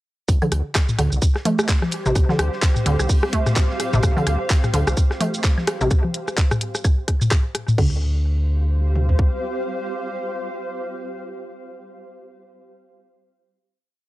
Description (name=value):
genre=minimal techno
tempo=128 BPM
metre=4/4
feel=swing 58% on 16ths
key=D minor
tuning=A4 = 436 Hz
part: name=round analog bass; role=bass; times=0.3-9.1 s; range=A1 to D2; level=-20 LUFS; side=equal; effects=sidechain pumping
part: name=garage drum kit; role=drums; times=0.3-9.3 s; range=kick drum, toms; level=-18 LUFS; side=equal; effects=cassette tape
part: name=garage drum kit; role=drums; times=0.3-7.9 s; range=crash cymbal, handclaps, hi-hat, shaker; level=-27 LUFS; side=equal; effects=cassette tape
part: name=gated 80s drum kit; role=drums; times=0.3-5.8 s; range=hi-hat, snare drum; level=-36 LUFS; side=right 1 dB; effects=none
part: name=granular cloud pad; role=texture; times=1.4-11.6 s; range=G4 to F5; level=-29 LUFS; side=equal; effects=built-in reverb, sidechain pumping
part: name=resonant blip pluck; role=riff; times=0.4-8.0 s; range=C3 to A3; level=-24 LUFS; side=right 1 dB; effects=chorus, sidechain pumping, analog delay
part: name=booming analog drum machine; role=percussion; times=0.4-7.8 s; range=congas, rim click, toms, woodblock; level=-23 LUFS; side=left 1 dB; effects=cassette tape, analog delay
room=light reverb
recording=home recording on cassette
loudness=-18 LUFS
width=side -17 dB against mid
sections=0.3-7.8 drop; 7.8-11.5 final chord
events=drop 0.3-7.8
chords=0.3 Dm7